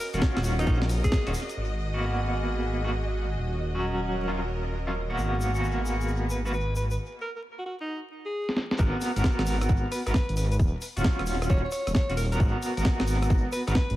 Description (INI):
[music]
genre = UK garage, two-step garage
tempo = 133 BPM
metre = 4/4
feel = swing 66% on 16ths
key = G# minor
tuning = A4 = 439 Hz
[part]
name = bright alto saxophone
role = melody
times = 0.0-1.3, 6.3-14.0 s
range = D#4 to C#5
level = -34 LUFS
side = equal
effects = tape echo
[part]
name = tube shaker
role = percussion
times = 0.0-1.6, 5.2-13.9 s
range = none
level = -45 LUFS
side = left 3 dB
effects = tape echo
[part]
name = rich studio string section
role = texture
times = 0.0-7.0 s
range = C#4 to D#5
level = -36 LUFS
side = right 1 dB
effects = sidechain pumping
[part]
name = electric guitar at the edge of break-up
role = stabs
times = 0.1-13.7 s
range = F#3 to A#4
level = -31 LUFS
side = equal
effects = tremolo, analog delay
[part]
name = dark detuned saw bass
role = bass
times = 0.1-14.0 s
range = D#1 to A#1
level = -28 LUFS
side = equal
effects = none
[part]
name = breakbeat sampler-style drum kit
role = drums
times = 0.1-1.6, 8.5-14.0 s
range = hi-hat, rim click, snare drum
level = -31 LUFS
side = equal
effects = low-pass filter on hats, low-pass filter on snare, tape echo
[part]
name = electronic kick drum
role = drums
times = 0.2-1.2, 8.8-13.9 s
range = none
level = -24 LUFS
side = equal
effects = none
[sound]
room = light reverb, studio reverb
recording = echo-heavy mix, vinyl crackle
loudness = -25 LUFS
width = side -15 dB against mid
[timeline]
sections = 0.0-1.6 A section; 1.6-8.8 B section; 8.8-14.0 C section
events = band accent 1.1; break 7.0-8.8; drum fill 8.5-8.8; drop 8.8-14.0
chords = 0.0 D#m7; 1.6 G#m7; 3.4 D#m7; 5.2 G#m7; 7.0 N.C.; 8.8 G#m7; 10.6 D#m7; 12.4 G#m7